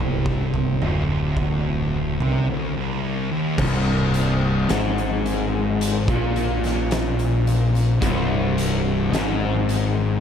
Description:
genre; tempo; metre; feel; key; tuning
stoner and doom metal; 54 BPM; 4/4; straight; unclear; A4 = 441 Hz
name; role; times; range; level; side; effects
thick fuzz guitar; riff; 0.0-10.2 s; C2 to C3; -24 LUFS; left 6 dB; distortion
thick fuzz guitar; riff; 0.0-3.6 s; C2 to C3; -26 LUFS; right 10 dB; distortion
fuzz fingered electric bass; bass; 0.0-10.2 s; C1 to C2; -26 LUFS; equal; overdrive
oversized low-tuned drum kit; drums; 0.3-9.9 s; crash cymbal, hi-hat, kick drum, snare drum, toms; -26 LUFS; equal; none
overdriven electric guitar; riff; 3.6-10.2 s; C2 to Bb2; -23 LUFS; equal; none
room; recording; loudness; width
light reverb, studio ambience; dark, warm production; -19 LUFS; side -8 dB against mid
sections
0.0-3.6 A section; 3.6-10.2 B section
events
break 2.5-3.6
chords
0.0 Cm; 3.6 N.C.

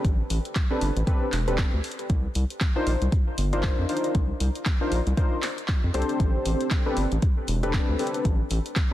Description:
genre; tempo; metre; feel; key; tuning
deep house; 117 BPM; 4/4; swing 58% on 16ths; A minor; A4 = 441 Hz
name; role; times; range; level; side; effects
warm analog keys; stabs; 0.0-8.3 s; C4 to C5; -28 LUFS; left 1 dB; chorus, sidechain pumping, analog delay
round analog bass; bass; 0.0-8.6 s; E1 to F2; -26 LUFS; equal; sidechain pumping
deep house drum kit; drums; 0.0-8.9 s; handclaps, hi-hat; -33 LUFS; equal; none
electronic kick drum; drums; 0.0-8.9 s; none; -24 LUFS; equal; none
room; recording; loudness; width
little or no reverb; dense, heavily limited modern master; -22 LUFS; side -14 dB against mid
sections
0.0-8.9 A section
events
none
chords
0.0 Am11; 2.1 Cm11; 6.2 Am11

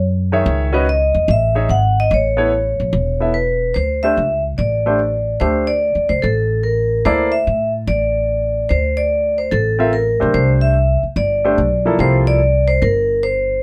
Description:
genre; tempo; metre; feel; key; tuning
modal jazz; 146 BPM; 4/4; swing 67% on 8ths; D minor from 3.8 s; A4 = 440 Hz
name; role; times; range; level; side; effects
upright bass; bass; 0.0-13.6 s; E1 to A2; -21 LUFS; equal; none
warm grand piano; accompaniment; 0.3-7.3, 9.8-12.4 s; Eb3 to Fb5; -21 LUFS; equal; none
vibraphone with medium hard mallets; melody; 0.9-13.6 s; A4 to Gb5; -19 LUFS; equal; none
room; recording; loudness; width
light reverb; none; -16 LUFS; mono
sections
0.0-3.8 A section; 3.8-13.6 B section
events
none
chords
0.0 Gbm9; 2.1 Aadd9; 3.8 D5; 10.3 C9sus4

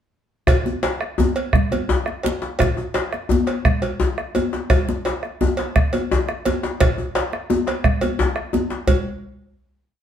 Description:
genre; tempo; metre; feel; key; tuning
west african traditional, West African drum ensemble; 114 BPM (dotted quarters); 12/8; straight; none; none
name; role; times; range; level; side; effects
bombo; percussion; 0.5-9.0 s; none; -20 LUFS; right 1 dB; none
congas; percussion; 0.5-9.0 s; none; -26 LUFS; equal; none
cowbell; percussion; 0.5-9.0 s; none; -26 LUFS; right 5 dB; none
djembe; percussion; 0.5-9.0 s; none; -22 LUFS; left 3 dB; none
room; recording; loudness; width
moderate studio reverb, RT60 0.8 s; band playing live in one room; -18 LUFS; side -9 dB against mid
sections
0.5-8.9 A section; 8.9-10.0 final hit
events
none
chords
none

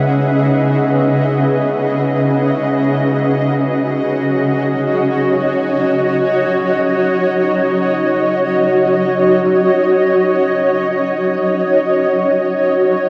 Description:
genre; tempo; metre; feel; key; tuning
ambient; free time; none; none; unclear; A4 = 440 Hz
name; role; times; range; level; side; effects
granular cloud pad; sustained chords; 0.0-13.1 s; C#4 to F#5; -16 LUFS; equal; built-in reverb, shimmer reverb
bowed-like drone; drone; 0.0-13.1 s; C#3; -23 LUFS; equal; built-in reverb
room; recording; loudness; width
wet huge ambient reverb, RT60 8.0 s; dark, warm production; -15 LUFS; mono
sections
0.0-13.1 A section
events
fade-in on ambient pad 0.0-13.1; fade-out on synth drone 0.0-13.1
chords
0.0 C#m11; 2.6 D#m7

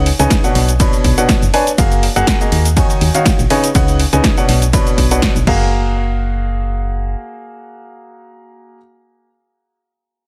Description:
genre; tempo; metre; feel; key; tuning
piano house; 122 BPM; 4/4; swing 54% on 16ths; F# major; A4 = 442 Hz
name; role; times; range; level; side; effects
clear grand piano; riff; 0.0-8.8 s; B2 to B5; -19 LUFS; equal; sidechain pumping, tape echo
solid FM bass; bass; 0.0-7.2 s; F#1 to D#2; -18 LUFS; equal; sidechain pumping
punchy analog drum machine; drums; 0.1-5.6 s; cabasa, crash cymbal, hi-hat, ride cymbal, snare drum; -22 LUFS; equal; overdrive
electronic kick drum; drums; 0.3-5.6 s; none; -18 LUFS; equal; overdrive
room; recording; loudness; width
digital ambience; none; -14 LUFS; mono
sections
0.0-5.7 A section; 5.7-9.7 B section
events
drop 0.0-5.7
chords
0.0 C#9sus4; 0.6 Bmadd9; 1.8 F#maj9; 2.8 D#m9; 3.5 C#9sus4; 4.5 Bmadd9; 5.5 F#maj9

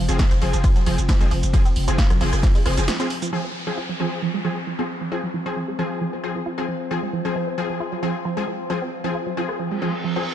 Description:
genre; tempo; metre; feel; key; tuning
driving peak-time techno; 134 BPM; 4/4; straight; F phrygian; A4 = 439 Hz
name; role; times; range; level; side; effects
resonant blip pluck; riff; 0.0-10.2 s; F3 to F4; -28 LUFS; right 5 dB; chorus, phaser, sidechain pumping, dub echo
growling 808-style bass; bass; 0.0-2.9 s; F1; -22 LUFS; equal; overdrive, sidechain pumping, low-pass filter
analog drone; drone; 0.0-10.3 s; F3 to C4; -32 LUFS; left 2 dB; chorus, sidechain pumping
rave stab; stabs; 0.1-10.2 s; F3 to Ab4; -27 LUFS; left 3 dB; chorus, built-in reverb, cassette tape, sidechain pumping, ping-pong delay
punchy analog drum machine; drums; 0.1-3.3, 9.5-9.6 s; hi-hat, ride cymbal, rim click, shaker, snare drum; -29 LUFS; right 1 dB; low-pass filter on hats, low-pass filter on perc, low-pass filter on cymbals, low-pass filter on snare, low-pass filter on room
electronic kick drum; drums; 0.2-2.5 s; none; -18 LUFS; equal; none
swinging big-band drum kit; drums; 0.2-3.3 s; hi-hat, snare drum; -37 LUFS; right 2 dB; none
downlifter and reverse cymbal; sound effects; 3.3-10.3 s; none; -34 LUFS; right 1 dB; none
room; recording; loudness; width
light reverb; dark, warm production; -20 LUFS; side -10 dB against mid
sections
0.0-3.3 A section; 3.3-10.3 B section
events
drop 0.0-3.3; break 2.9-3.3; band accent 2.9; reverse cymbal 9.7-10.3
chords
0.0 Fm

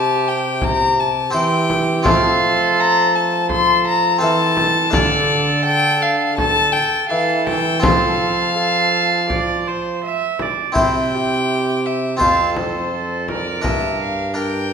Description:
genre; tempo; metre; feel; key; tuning
classical, renaissance-style consort dance; 83 BPM; 4/4; straight; unclear; A4 = 437 Hz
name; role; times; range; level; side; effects
warm violin; melody; 0.0-14.7 s; C5 to C6; -18 LUFS; left 4 dB; none
rich viola; second line; 0.0-14.7 s; E4 to E5; -22 LUFS; right 5 dB; none
harpsichord; accompaniment; 0.0-14.7 s; F2 to F5; -22 LUFS; equal; none
warm trombone; bass; 0.0-14.7 s; F2 to F3; -23 LUFS; right 3 dB; none
frame drum; percussion; 0.6-14.0 s; none; -23 LUFS; left 1 dB; none
room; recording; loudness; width
wet recital hall reverb, RT60 1.4 s; minimal, uncompressed stereo recording; -15 LUFS; side -6 dB against mid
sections
0.0-10.8 A section; 10.8-14.7 B section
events
none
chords
0.0 C; 2.1 F; 4.9 Dm; 7.8 F; 10.8 C; 12.2 F; 13.7 Gm

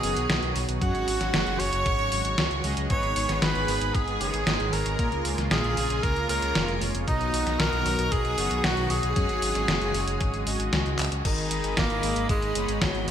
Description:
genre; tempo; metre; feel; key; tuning
synthwave; 115 BPM; 4/4; straight; G# dorian; A4 = 440 Hz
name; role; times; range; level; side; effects
breathy tenor saxophone; melody; 0.0-13.1 s; D#3 to C#5; -29 LUFS; equal; ping-pong delay
string machine, violins; second line; 0.0-13.1 s; D#3 to C#5; -34 LUFS; equal; ensemble chorus, cassette tape, digital delay
warm analog pad; sustained chords; 0.0-13.1 s; C#3 to B5; -33 LUFS; equal; chorus, sidechain pumping
analog synth brass; stabs; 0.0-13.1 s; F#3 to D#5; -35 LUFS; right 3 dB; chorus
dark detuned saw bass; bass; 0.0-13.1 s; E#1 to A#2; -30 LUFS; equal; none
detuned 8-bit digital drum machine; drums; 0.0-13.1 s; crash cymbal, handclaps, hi-hat, snare drum; -28 LUFS; equal; gated reverb
electronic kick drum; drums; 0.8-12.9 s; none; -28 LUFS; equal; none
room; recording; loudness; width
moderate plate reverb, RT60 2.5 s; bright 1980s-style digital production; -23 LUFS; side -9 dB against mid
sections
0.0-11.3 A section; 11.3-13.1 A section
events
drum fill 11.0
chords
0.0 B; 0.8 F#sus2; 2.9 G#m; 5.0 A#m7; 7.1 B; 9.2 F#sus2; 11.3 G#m

